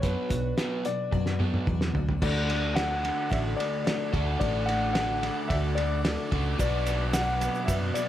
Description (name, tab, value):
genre	folk rock and heartland rock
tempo	110 BPM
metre	4/4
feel	straight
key	unclear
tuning	A4 = 440 Hz
part	dark baby grand piano	melody	0.0-8.1 s	B4 to F#5	-31 LUFS	left 2 dB	analog delay
part	picked twelve-string acoustic guitar	accompaniment	0.0-8.1 s	B2 to F#4	-38 LUFS	left 3 dB	wide subtle chorus
part	crunchy overdriven guitar	riff	0.0-8.1 s	B2 to F#4	-33 LUFS	right 1 dB	none
part	hollow-body short-scale picked electric bass	bass	0.0-7.9 s	A1 to F#2	-29 LUFS	equal	none
part	cloth-damped thuddy drum kit	drums	0.0-8.1 s	crash cymbal, hi-hat, kick drum, ride cymbal, snare drum, toms	-30 LUFS	equal	analog delay
part	dark upright piano	accompaniment	2.2-8.1 s	F#4 to D5	-42 LUFS	right 2 dB	none
part	warm chamber string section	sustained chords	2.2-8.1 s	A4 to D6	-41 LUFS	left 2 dB	none
part	tube shaker	percussion	6.6-8.1 s	none	-44 LUFS	right 6 dB	none
room	light reverb, small room ambience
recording	echo-heavy mix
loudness	-25 LUFS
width	side -12 dB against mid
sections	0.0-2.2 A section; 2.2-8.1 B section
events	drum fill 1.1-2.2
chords	0.0 Bm; 2.2 D; 6.6 Bm